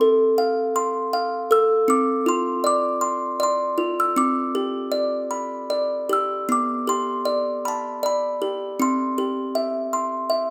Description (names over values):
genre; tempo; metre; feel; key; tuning
children's music, lullaby; 79 BPM; 3/4; rubato; unclear; A4 = 440 Hz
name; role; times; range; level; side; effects
music box; solo; 0.0-10.5 s; B3 to E6; -22 LUFS; equal; none
room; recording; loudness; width
moderate recital hall reverb, RT60 1.4 s; none; -23 LUFS; mono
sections
0.0-10.5 A section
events
none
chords
0.0 F/C; 1.9 Dm7; 4.2 Gsus4; 4.9 G; 8.8 C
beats
0.39 1.14 | 1.90 2.66 3.41 | 4.17 4.94 5.71 | 6.48 7.26 8.03 | 8.79 9.55 10.30